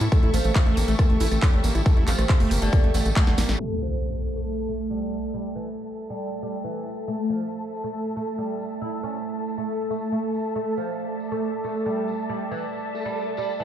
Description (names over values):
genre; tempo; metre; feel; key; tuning
psychedelic trance; 138 BPM; 4/4; straight; unclear; A4 = 440 Hz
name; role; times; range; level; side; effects
evolving wavetable pad; sustained chords; 0.0-13.6 s; A3 to D5; -32 LUFS; right 3 dB; chorus, built-in reverb, sidechain pumping
overdriven acid bass; riff; 0.0-3.6 s; A3 to E4; -29 LUFS; right 1 dB; auto-pan, sidechain pumping, ping-pong delay
tight sequencer bass; bass; 0.0-3.6 s; G1 to A2; -22 LUFS; equal; none
techno drum kit; drums; 0.0-3.6 s; handclaps, hi-hat, rim click, snare drum; -30 LUFS; equal; low-pass filter on snare, low-pass filter on hats, low-pass filter on room
tambourine; percussion; 0.0-13.6 s; none; -38 LUFS; right 2 dB; none
rich studio string section; texture; 0.0-13.6 s; A4 to C#6; -36 LUFS; left 1 dB; sidechain pumping
oud; melody; 0.1-13.6 s; D3 to E4; -29 LUFS; equal; phaser, sidechain pumping, dub echo
electronic kick drum; drums; 0.1-3.2 s; none; -19 LUFS; equal; none
formant-sweep wobble bass; second line; 1.2-3.2, 11.6-13.4 s; A3 to C#4; -38 LUFS; left 2 dB; none
impact; sound effects; 3.6-5.3 s; none; -31 LUFS; equal; none
room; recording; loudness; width
light reverb; played on a big sound system in a bare room, stone room reverb, low-pass filter; -22 LUFS; side -10 dB against mid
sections
0.0-3.6 A section; 3.6-13.6 B section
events
drop 0.0-3.6; drum fill 3.3-3.6; impact 3.6-5.3; filter sweep 3.6-13.6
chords
0.0 A5